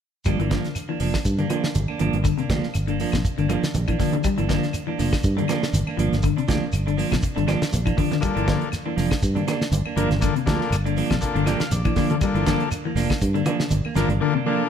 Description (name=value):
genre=afrobeat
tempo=120 BPM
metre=4/4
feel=swing 55% on 16ths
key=G dorian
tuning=A4 = 441 Hz
part: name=semi-hollow electric guitar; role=arpeggios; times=0.3-14.6 s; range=C3 to G3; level=-27 LUFS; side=left 9 dB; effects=none
part: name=clean electric guitar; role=stabs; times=0.3-14.6 s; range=F3 to D4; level=-26 LUFS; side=right 6 dB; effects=spring reverb, slapback echo
part: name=fingered electric bass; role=bass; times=0.3-14.2 s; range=F1 to G2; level=-24 LUFS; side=equal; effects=none
part: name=damped 70s drum kit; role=drums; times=0.3-14.2 s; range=hi-hat, kick drum, snare drum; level=-26 LUFS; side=equal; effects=none
part: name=claves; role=percussion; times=0.3-14.0 s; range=none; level=-40 LUFS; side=left 6 dB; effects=none
part: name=congas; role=percussion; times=0.3-14.2 s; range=none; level=-30 LUFS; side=right 3 dB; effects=none
part: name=shekere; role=percussion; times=0.3-14.1 s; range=none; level=-32 LUFS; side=right 2 dB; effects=none
part: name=overdriven combo organ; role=accompaniment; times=8.2-14.7 s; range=Bb3 to G5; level=-27 LUFS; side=left 5 dB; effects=none
room=light reverb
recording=none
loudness=-20 LUFS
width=side -8 dB against mid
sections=0.3-14.7 A section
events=transistor combo organ fill 11.2-12.2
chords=0.3 Gm7